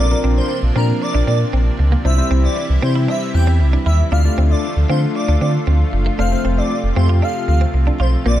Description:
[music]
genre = pop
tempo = 116 BPM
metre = 4/4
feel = straight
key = F major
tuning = A4 = 440 Hz
[part]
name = airy dreamy lead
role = melody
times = 0.0-8.4 s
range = Bb4 to G5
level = -24 LUFS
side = equal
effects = chorus
[part]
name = tine electric piano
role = accompaniment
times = 0.0-8.3 s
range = F3 to F5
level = -24 LUFS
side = left 5 dB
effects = wide subtle chorus
[part]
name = lush unison pad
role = sustained chords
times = 0.0-8.4 s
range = C3 to F4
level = -24 LUFS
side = right 1 dB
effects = chorus
[part]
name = direct-recorded clean electric guitar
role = riff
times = 0.0-8.4 s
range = A3 to F4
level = -28 LUFS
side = right 6 dB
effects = analog chorus
[part]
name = sub bass with octave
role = bass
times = 0.0-8.4 s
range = F1 to D3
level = -15 LUFS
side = equal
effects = none
[sound]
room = light reverb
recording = none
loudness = -14 LUFS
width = side -13 dB against mid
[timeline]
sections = 0.0-8.4 A section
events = none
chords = 0.0 Bbadd9; 2.0 C; 4.1 Dm; 6.2 F

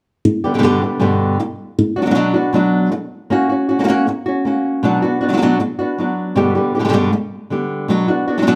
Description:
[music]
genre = flamenco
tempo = 157 BPM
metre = 4/4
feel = straight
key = B harmonic minor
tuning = A4 = 440 Hz
[part]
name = flamenco guitar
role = solo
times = 0.3-8.6 s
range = G2 to G4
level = -17 LUFS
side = equal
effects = none
[sound]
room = moderate large studio reverb, RT60 1.1 s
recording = none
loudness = -17 LUFS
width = mono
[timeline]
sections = 0.3-8.6 A section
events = none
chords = 0.3 G; 1.8 Bm; 3.3 F#/A#; 4.8 Bm; 6.4 G; 7.9 Bm

